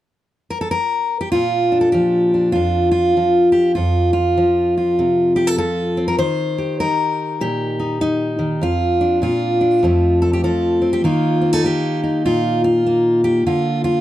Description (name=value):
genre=folk, solo fingerstyle acoustic guitar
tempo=99 BPM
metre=4/4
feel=swing 63% on 8ths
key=Bb major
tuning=A4 = 440 Hz
part: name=fingerpicked steel-string acoustic guitar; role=solo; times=0.5-14.0 s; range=F2 to C5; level=-15 LUFS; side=equal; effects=none
room=light reverb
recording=dry, close 1970s-style studio recording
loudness=-15 LUFS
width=side -13 dB against mid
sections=0.0-1.3 A section; 1.3-14.0 B section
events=none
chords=0.0 N.C.; 1.3 Bb; 3.8 F5; 6.2 Eb; 8.6 Bb/F; 9.8 F; 11.0 Ebadd9; 13.5 Dm